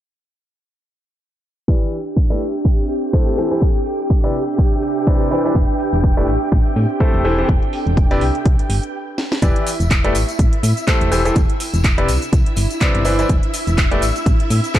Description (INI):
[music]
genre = piano house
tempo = 124 BPM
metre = 4/4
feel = swing 57% on 16ths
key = E minor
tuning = A4 = 440 Hz
[part]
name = string machine, violins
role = sustained chords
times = 1.7-14.8 s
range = E4 to G5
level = -26 LUFS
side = left 1 dB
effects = ensemble chorus, sidechain pumping
[part]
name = bright grand piano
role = riff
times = 1.7-14.8 s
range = C3 to D5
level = -22 LUFS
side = left 1 dB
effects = sidechain pumping, low-pass filter, digital delay
[part]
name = electronic kick drum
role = drums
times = 1.7-14.8 s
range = none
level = -16 LUFS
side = equal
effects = none
[part]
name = house drum kit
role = drums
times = 1.7-14.8 s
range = handclaps, hi-hat, shaker, snare drum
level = -24 LUFS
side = equal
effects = none
[part]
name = airy breathy pad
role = texture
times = 1.9-14.8 s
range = C3 to G5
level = -26 LUFS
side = right 3 dB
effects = chorus, sidechain pumping
[part]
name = solid FM bass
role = bass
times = 5.6-14.6 s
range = E1 to A2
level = -19 LUFS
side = equal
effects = sidechain pumping
[part]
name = tambourine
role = percussion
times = 9.4-14.8 s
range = none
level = -34 LUFS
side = left 1 dB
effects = none
[sound]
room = light reverb, digital ambience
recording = dark, warm production, low-pass filter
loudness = -14 LUFS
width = side -12 dB against mid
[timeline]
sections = 1.7-9.4 A section; 9.4-14.8 B section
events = filter sweep on grand piano 1.7-9.4; filter sweep on string machine 1.7-9.4; filter sweep 1.7-9.4; stop 8.9-9.4; drum fill 9.2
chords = 1.7 Em7; 2.4 Am7; 3.6 Em7; 6.3 Am7; 7.5 Em7; 8.2 Cmaj9; 9.4 Em7; 10.1 Am7; 11.4 Em7; 12.1 Cmaj9; 13.3 Em7; 14.0 Am7